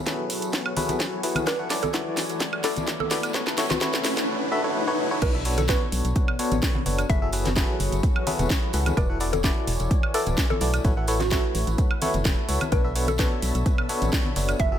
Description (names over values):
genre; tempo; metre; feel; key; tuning
piano house; 128 BPM; 4/4; swing 53% on 16ths; unclear; A4 = 440 Hz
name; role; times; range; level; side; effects
riser; sound effects; 0.5-5.2 s; none; -33 LUFS; equal; none
granular cloud pad; texture; 0.0-14.8 s; B3 to B5; -34 LUFS; left 1 dB; built-in reverb, sidechain pumping
barking FM electric piano; riff; 0.1-14.8 s; B2 to F#5; -28 LUFS; left 1 dB; chorus, tremolo, sidechain pumping, low-pass filter
electronic kick drum; drums; 0.1-14.7 s; none; -24 LUFS; equal; high-pass filter on kick
house drum kit; drums; 0.1-14.7 s; crash cymbal, hi-hat, snare drum, woodblock; -29 LUFS; right 1 dB; high-pass filter on snare, high-pass filter on hats, high-pass filter on perc, high-pass filter on cymbals
tambourine and congas; percussion; 0.1-14.7 s; none; -34 LUFS; left 2 dB; none
mallet-like synth pluck; melody; 1.5-14.8 s; F#4 to E5; -31 LUFS; right 1 dB; chorus, phaser, ping-pong delay
organ-like FM bass; bass; 5.2-14.8 s; D1 to C#2; -26 LUFS; equal; sidechain pumping
room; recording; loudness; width
light reverb, digital ambience; none; -22 LUFS; side -10 dB against mid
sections
0.0-5.2 A section; 5.2-14.8 B section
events
build-up 0.0-5.2; drum fill 0.0-4.3; filter sweep on FM electric piano 0.0-5.2; riser 0.5-5.2; drop 5.2-14.8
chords
0.0 F#m11; 1.5 E9sus4; 3.3 A69; 5.2 Bm9; 7.1 F#m11; 9.0 E9sus4; 10.8 A69; 12.7 Bm9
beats
0.06 0.53 1.00 | 1.47 1.94 2.41 2.88 | 3.35 3.81 4.28 4.75 | 5.22 5.69 6.16 6.63 | 7.10 7.56 8.03 8.50 | 8.97 9.44 9.91 10.38 | 10.85 11.31 11.78 12.25 | 12.72 13.19 13.66 14.13 | 14.60